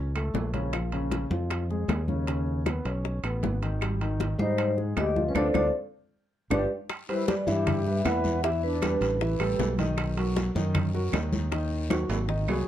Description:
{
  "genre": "Afro-Cuban jazz",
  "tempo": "156 BPM",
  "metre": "4/4",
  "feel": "straight",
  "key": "unclear",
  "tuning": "A4 = 440 Hz",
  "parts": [
    { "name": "dark concert grand piano", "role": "accompaniment", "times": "0.0-12.7 s", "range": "C#3 to E5", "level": "-31 LUFS", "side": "equal", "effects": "none" },
    { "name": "fingered electric bass", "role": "bass", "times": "0.0-12.7 s", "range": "G1 to Ab2", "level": "-29 LUFS", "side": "equal", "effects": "none" },
    { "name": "congas", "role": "percussion", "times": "0.1-12.7 s", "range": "none", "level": "-33 LUFS", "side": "left 1 dB", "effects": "none" },
    { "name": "bongos", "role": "percussion", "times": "0.2-12.7 s", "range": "none", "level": "-35 LUFS", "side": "left 8 dB", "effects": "none" },
    { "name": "claves", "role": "percussion", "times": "0.2-12.7 s", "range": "none", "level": "-38 LUFS", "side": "right 4 dB", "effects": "none" },
    { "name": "timbales", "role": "percussion", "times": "0.2-12.6 s", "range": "none", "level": "-37 LUFS", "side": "right 5 dB", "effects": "none" },
    { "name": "vibraphone with medium mallets", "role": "melody", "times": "4.4-9.7 s", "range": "G4 to F#5", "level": "-29 LUFS", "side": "equal", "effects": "none" },
    { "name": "concert flute", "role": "second line", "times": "4.4-9.2 s", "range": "Db4 to B4", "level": "-33 LUFS", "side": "left 3 dB", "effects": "none" },
    { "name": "guiro", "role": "percussion", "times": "6.9-12.7 s", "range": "none", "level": "-45 LUFS", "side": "left 6 dB", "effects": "none" }
  ],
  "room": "light reverb",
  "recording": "dark, warm production, lossy compression artefacts",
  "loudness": "-25 LUFS",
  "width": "side -11 dB against mid",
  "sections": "0.0-6.9 A section; 6.9-12.7 B section",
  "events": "band accent 5.4-6.9; drum fill 11.9-12.7",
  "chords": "0.0 Faug (rootless); 0.7 Bbm7; 2.3 Abmadd11; 3.8 Abmaj7; 5.4 Dm7; 6.1 G7(no3); 6.9 Emadd9; 8.4 Em7; 9.2 Asus2; 10.0 Bmaj7; 11.5 Ebm"
}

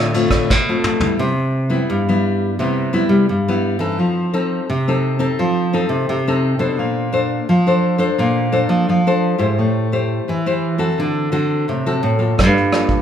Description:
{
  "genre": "samba and choro",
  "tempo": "86 BPM",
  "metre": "4/4",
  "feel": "straight",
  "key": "unclear",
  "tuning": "A4 = 445 Hz",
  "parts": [
    { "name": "nylon-string guitar", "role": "accompaniment", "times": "0.0-13.0 s", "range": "G2 to C5", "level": "-18 LUFS", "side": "left 3 dB", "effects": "none" },
    { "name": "nylon-string guitar", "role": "bass", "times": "0.0-13.0 s", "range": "G2 to G3", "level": "-18 LUFS", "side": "right 2 dB", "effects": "none" },
    { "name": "vintage brush drum kit", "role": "drums", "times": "0.1-1.2, 12.4-13.0 s", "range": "hi-hat, kick drum, ride cymbal, rim click, snare drum, toms", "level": "-18 LUFS", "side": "right 1 dB", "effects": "none" }
  ],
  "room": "moderate large studio reverb, RT60 1.2 s",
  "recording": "band playing live in one room",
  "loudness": "-15 LUFS",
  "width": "side -9 dB against mid",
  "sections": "0.0-1.2 A section; 1.2-13.0 B section",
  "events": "drum fill 0.5-1.2",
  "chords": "0.0 Dm7; 1.2 Cmaj7; 4.0 F7; 6.8 Bbmaj9; 9.6 Am7; 11.0 D7; 12.4 Gm9"
}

